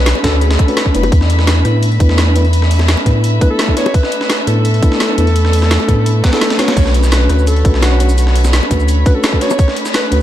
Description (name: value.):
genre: liquid drum and bass.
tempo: 170 BPM.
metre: 4/4.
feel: straight.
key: unclear.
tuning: A4 = 439 Hz.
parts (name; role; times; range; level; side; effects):
mellow alto saxophone; melody; 0.0-0.9, 3.4-10.2 s; F#4 to C#5; -21 LUFS; equal; digital delay.
rich chamber string section; sustained chords; 0.0-10.2 s; A3 to B5; -22 LUFS; equal; none.
saturated sub bass; bass; 0.0-10.2 s; F#1 to A2; -12 LUFS; equal; none.
breakbeat sampler-style drum kit; drums; 0.1-10.2 s; hi-hat, snare drum; -19 LUFS; equal; high-pass filter on hats, high-pass filter on snare, high-pass filter on room.
garage drum kit; drums; 0.1-10.2 s; cabasa, crash cymbal, hi-hat, rim click, snare drum; -21 LUFS; equal; none.
mellow FM electric piano; accompaniment; 0.2-10.2 s; A3 to B4; -20 LUFS; left 2 dB; chorus, digital delay.
electronic kick drum; drums; 0.2-9.7 s; none; -12 LUFS; equal; none.
bongos; percussion; 0.2-9.6 s; none; -22 LUFS; left 6 dB; none.
room: little or no reverb.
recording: dark, warm production.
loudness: -10 LUFS.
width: side -12 dB against mid.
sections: 0.0-10.2 A section.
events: drum fill 6.6.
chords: 0.0 Bm9; 1.1 E7sus4; 6.8 Bm9.